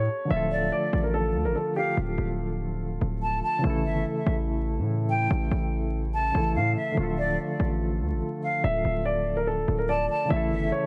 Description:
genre	hip hop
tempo	144 BPM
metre	4/4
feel	half-time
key	D harmonic minor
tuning	A4 = 440 Hz
part	dark grand piano	melody	0.0-1.9, 8.6-10.9 s	G4 to E5	-30 LUFS	equal	low-pass filter
part	hard-hitting 808-style bass	bass	0.0-10.7 s	D1 to A2	-30 LUFS	equal	none
part	soft electric-piano-like synth keys	accompaniment	0.3-10.9 s	C#3 to A4	-32 LUFS	equal	chorus, tremolo, low-pass filter
part	hollow concert flute	second line	0.5-10.7 s	D5 to A5	-33 LUFS	equal	digital delay
room	light reverb, small room ambience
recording	vinyl crackle, nothing above 10.9 kHz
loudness	-26 LUFS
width	mono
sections	0.0-10.9 A section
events	none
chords	0.3 Dm; 3.6 A; 7.0 Dm; 10.3 A

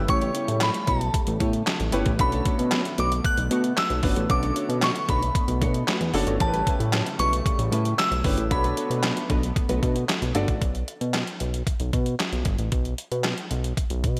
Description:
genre	early-eighties boogie funk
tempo	114 BPM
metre	4/4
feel	straight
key	B minor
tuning	A4 = 442 Hz
part	glassy synth bell	melody	0.0-9.5 s	A5 to F#6	-30 LUFS	equal	chorus, slapback echo, tape echo
part	chorused pulse-width pad	sustained chords	0.0-10.6 s	C#3 to B3	-37 LUFS	equal	none
part	fat analog bass	bass	0.0-14.2 s	F#1 to B2	-28 LUFS	equal	none
part	clear concert grand piano	accompaniment	0.1-10.5 s	C#4 to D5	-32 LUFS	equal	slapback echo
part	clean electric guitar	riff	0.1-10.5 s	G3 to C#5	-36 LUFS	equal	ensemble chorus, slapback echo
part	detuned 8-bit digital drum machine	drums	0.1-14.2 s	handclaps, hi-hat, kick drum, snare drum	-28 LUFS	equal	overdrive
room	moderate lush hall reverb, RT60 1.7 s, digital ambience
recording	big arena sound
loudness	-24 LUFS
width	mono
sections	0.0-10.6 A section; 10.6-14.2 B section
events	none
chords	0.0 A9; 2.2 Bm9; 6.4 A9; 8.5 Bm7; 10.6 B5

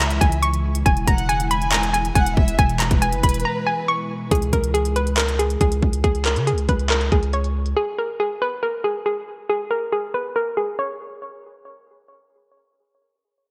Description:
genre	hip hop, trap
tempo	139 BPM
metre	4/4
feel	half-time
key	C# dorian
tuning	A4 = 439 Hz
part	hollow square pluck	melody	0.0-11.2 s	G#4 to C#6	-25 LUFS	equal	chorus, low-pass filter
part	warm studio violin section	second line	0.0-4.3 s	B4 to G#5	-32 LUFS	equal	digital delay
part	ethereal airy pad	sustained chords	0.0-4.3 s	B2 to E4	-32 LUFS	equal	ensemble chorus, built-in reverb
part	long sustained 808-style bass	bass	0.0-7.7 s	E1 to C#3	-25 LUFS	equal	none
part	trap drum kit	drums	0.0-7.8 s	handclaps, hi-hat, kick drum	-23 LUFS	equal	gated reverb
room	light reverb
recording	bright 1980s-style digital production, low-pass filter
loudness	-21 LUFS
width	mono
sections	0.0-4.3 A section; 4.3-11.2 B section; 11.2-13.5 C section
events	break 3.4-4.3; filter sweep 4.3-11.2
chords	0.0 C#m; 0.9 E; 4.3 C#5; 7.8 N.C.

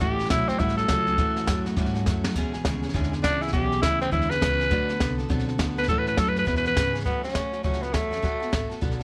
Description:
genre	rockabilly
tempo	204 BPM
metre	4/4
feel	swing 63% on 8ths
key	A major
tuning	A4 = 440 Hz
part	breathy tenor saxophone	melody	0.0-8.8 s	A3 to B4	-28 LUFS	equal	none
part	picked steel-string acoustic guitar	accompaniment	0.0-9.0 s	A2 to A4	-36 LUFS	equal	none
part	clean electric guitar	riff	0.0-7.0 s	E2 to C4	-32 LUFS	equal	none
part	upright bass	bass	0.0-9.0 s	A1 to A2	-34 LUFS	equal	none
part	jazz brush drum kit	drums	0.0-9.0 s	hi-hat, kick drum, snare drum, splash cymbal	-30 LUFS	equal	none
room	small room ambience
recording	none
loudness	-25 LUFS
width	mono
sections	0.0-7.1 A section; 7.1-9.0 B section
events	tenor saxophone solo 0.0-7.1; drum fill 2.1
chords	0.0 A6; 2.4 E6; 4.7 D6; 5.9 A6; 6.5 E6; 7.1 A6; 8.2 D6

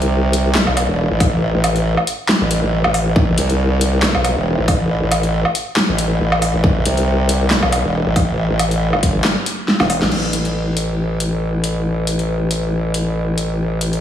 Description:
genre	heavy wobble dubstep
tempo	138 BPM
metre	4/4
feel	swing 55% on 16ths, half-time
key	A minor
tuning	A4 = 442 Hz
part	formant-sweep wobble bass	bass	0.0-14.0 s	E1 to C2	-16 LUFS	equal	chorus, overdrive
part	dubstep drum kit	drums	0.0-14.0 s	crash cymbal, handclaps, hi-hat, snare drum, woodblock	-19 LUFS	equal	studio reverb
part	electronic kick drum	drums	1.2-9.1 s	none	-16 LUFS	equal	overdrive, studio reverb
room	light reverb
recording	heavily compressed radio sound, multiband compression, studio reverb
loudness	-15 LUFS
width	side -10 dB against mid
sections	0.0-10.1 A section; 10.1-14.0 B section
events	drop 0.0-10.1; drum fill 9.7-10.1; band accent 10.0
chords	none

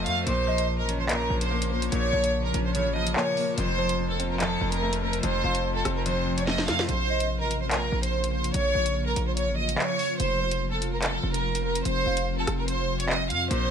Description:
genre	hip hop, drill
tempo	145 BPM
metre	4/4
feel	half-time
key	Bb harmonic minor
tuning	A4 = 445 Hz
part	warm studio violin section	melody	0.0-13.7 s	A4 to F5	-28 LUFS	right 2 dB	none
part	clear grand piano	accompaniment	0.0-6.9, 13.5-13.7 s	F2 to Db4	-31 LUFS	left 2 dB	none
part	hard-hitting 808-style bass	bass	0.0-13.7 s	F1 to F2	-29 LUFS	equal	none
part	drill drum kit	drums	0.1-13.6 s	handclaps, hi-hat, rim click, snare drum	-30 LUFS	equal	none
part	ethereal airy pad	sustained chords	0.8-13.7 s	C3 to F4	-34 LUFS	left 1 dB	ensemble chorus, built-in reverb
part	gliding portamento lead	second line	0.5-12.3 s	C5 to F5	-36 LUFS	left 6 dB	chorus, digital delay
room	little or no reverb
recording	none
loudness	-24 LUFS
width	side -7 dB against mid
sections	0.0-6.9 A section; 6.9-13.7 A section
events	drum fill 6.5-6.9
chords	0.3 Bbm; 3.6 F; 6.9 Bbm; 10.2 F5

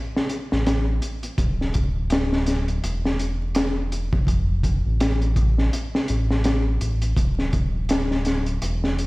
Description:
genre	trip hop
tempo	83 BPM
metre	4/4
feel	swing 59% on 16ths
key	unclear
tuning	A4 = 442 Hz
part	crunchy breakbeat drum kit	drums	0.2-9.1 s	hi-hat, kick drum, snare drum	-23 LUFS	equal	vintage 12-bit sampler grit
part	round analog bass	bass	0.5-9.1 s	D1 to A1	-23 LUFS	equal	none
room	light reverb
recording	played on a big sound system in a bare room, stone room reverb, vinyl crackle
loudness	-20 LUFS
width	side -22 dB against mid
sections	0.0-9.1 A section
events	none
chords	none

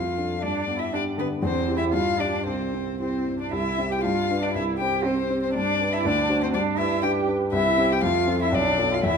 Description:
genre	quick classical-period movement for piano trio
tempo	119 BPM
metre	2/4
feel	rubato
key	C major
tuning	A4 = 443 Hz
part	muted violin	melody	0.0-9.2 s	B4 to G5	-26 LUFS	left 7 dB	none
part	muted cello	second line	0.0-9.2 s	B3 to G4	-27 LUFS	right 7 dB	none
part	dark baby grand piano	accompaniment	0.0-9.2 s	B1 to C5	-25 LUFS	left 1 dB	none
room	wet recital hall reverb, RT60 1.7 s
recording	none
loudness	-21 LUFS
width	side -6 dB against mid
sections	0.0-3.5 A section; 3.5-9.2 B section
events	none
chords	0.4 G; 1.4 C/E; 1.9 G5; 2.5 C; 4.0 G7; 4.5 C5; 5.5 G; 6.0 D7; 6.5 G; 7.5 C; 8.0 F; 8.5 Bm7b5

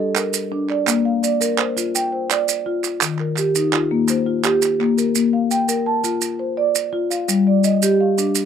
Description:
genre	southern african traditional, mbira-style interlocking cycle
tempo	112 BPM (dotted quarters)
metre	12/8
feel	straight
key	Bb major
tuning	A4 = 440 Hz
part	marimba with soft mallets	arpeggios	0.0-8.5 s	Eb3 to A5	-17 LUFS	left 1 dB	none
part	group handclap	percussion	0.2-4.9 s	none	-22 LUFS	right 9 dB	none
part	maracas	percussion	0.2-8.5 s	none	-23 LUFS	right 9 dB	none
room	light reverb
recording	close, detailed microphones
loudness	-17 LUFS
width	side -8 dB against mid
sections	0.0-5.1 A section; 5.1-8.5 B section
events	none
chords	0.0 Gm (rootless); 0.9 Bb; 3.0 Eb; 5.1 Bb; 7.3 G5

